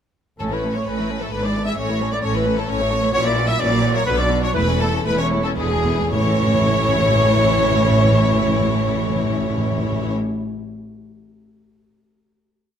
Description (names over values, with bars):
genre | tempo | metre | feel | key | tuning
quick classical-period movement for symphony orchestra | 107-134 BPM | 3/4 | rubato | A major | A4 = 439 Hz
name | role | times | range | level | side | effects
clear studio violin section | melody | 0.4-10.1 s | G#4 to E5 | -26 LUFS | left 2 dB | none
rich studio violin section | second line | 0.4-10.1 s | C#4 to C#5 | -27 LUFS | left 5 dB | none
rich studio viola section | accompaniment | 0.4-10.1 s | D3 to D4 | -25 LUFS | right 2 dB | none
dark trumpet section | stabs | 0.4-10.1 s | G#4 to E5 | -23 LUFS | equal | none
clear studio double bass section | bass | 0.4-10.1 s | E1 to B1 | -25 LUFS | right 3 dB | none
warm studio cello section | bass | 0.4-10.1 s | E2 to B2 | -25 LUFS | equal | none
timpani | percussion | 0.4-1.1, 4.5-10.1 s | E2 to A2 | -23 LUFS | equal | none
room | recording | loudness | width
moderate recital hall reverb, RT60 1.4 s | close, detailed microphones | -16 LUFS | side -8 dB against mid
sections
0.4-6.1 A section; 6.1-9.4 final chord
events
slowing down 2.5-6.1; timpani fill 5.6-6.1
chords
0.4 A; 1.3 E7/G#; 1.8 A; 3.1 F#7/A#; 4.1 Bm; 4.5 A/E; 5.6 E7; 6.1 A